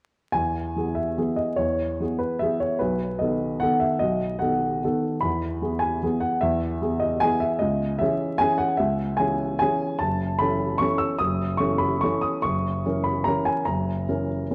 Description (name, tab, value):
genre	classical, piano waltz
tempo	149 BPM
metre	3/4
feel	uneven beats, rubato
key	E major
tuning	A4 = 440 Hz
part	warm upright piano	solo	0.3-14.5 s	F#1 to E6	-24 LUFS	equal	none
room	wet scoring stage reverb, RT60 2.0 s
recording	dark, warm production, vinyl crackle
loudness	-24 LUFS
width	mono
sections	0.3-14.5 A section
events	none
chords	0.3 E; 2.8 B7; 5.2 E; 7.6 C#m; 10.0 F#m7; 12.4 F#7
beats	| 0.34 0.76 1.18 | 1.58 2.00 2.41 | 2.81 3.20 3.61 | 4.01 4.41 4.83 | 5.22 5.61 6.02 | 6.42 6.82 7.23 | 7.62 8.01 8.41 | 8.80 9.20 9.62 | 10.01 10.41 10.81 | 11.21 11.60 12.02 | 12.44 12.85 13.27 | 13.68 14.08 14.50